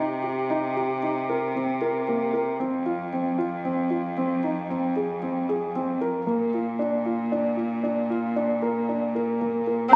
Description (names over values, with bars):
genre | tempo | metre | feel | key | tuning
contemporary instrumental, chamber music in an uneven meter | 114 BPM | 7/4 | straight | Bb mixolydian | A4 = 440 Hz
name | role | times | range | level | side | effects
dark baby grand piano | arpeggios | 0.0-10.0 s | Bb3 to Bb4 | -28 LUFS | equal | none
rich cello | bass | 0.0-10.0 s | F2 to C3 | -31 LUFS | equal | none
room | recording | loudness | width
light reverb | recorded on a phone in the room, studio reverb | -26 LUFS | mono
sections
0.0-9.9 A section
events
none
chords
0.0 Cm7; 2.6 F5; 6.3 Bb